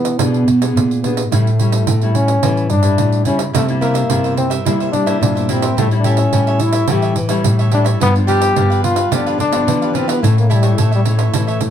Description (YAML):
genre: samba and choro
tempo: 108 BPM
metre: 4/4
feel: straight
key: unclear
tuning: A4 = 440 Hz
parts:
  - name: mellow trombone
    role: melody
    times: 0.0-11.7 s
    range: G3 to G4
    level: -18 LUFS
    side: left 2 dB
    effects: none
  - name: nylon-string guitar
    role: accompaniment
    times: 0.0-11.7 s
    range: G2 to G#4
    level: -21 LUFS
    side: left 3 dB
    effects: none
  - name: nylon-string guitar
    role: bass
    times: 0.0-11.7 s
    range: G2 to A3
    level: -16 LUFS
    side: equal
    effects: none
  - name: pandeiro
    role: percussion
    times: 0.0-11.7 s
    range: none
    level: -21 LUFS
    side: right 6 dB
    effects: none
  - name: cavaquinho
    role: accompaniment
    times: 3.5-11.6 s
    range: D4 to F5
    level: -25 LUFS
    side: right 5 dB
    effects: none
room: wet small room reverb, RT60 0.6 s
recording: heard from further back in the room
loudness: -13 LUFS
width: side -9 dB against mid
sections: 0.0-11.7 A section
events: none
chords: 0.0 E7; 1.3 A7; 3.5 C7; 5.8 A7; 8.0 G7; 10.2 A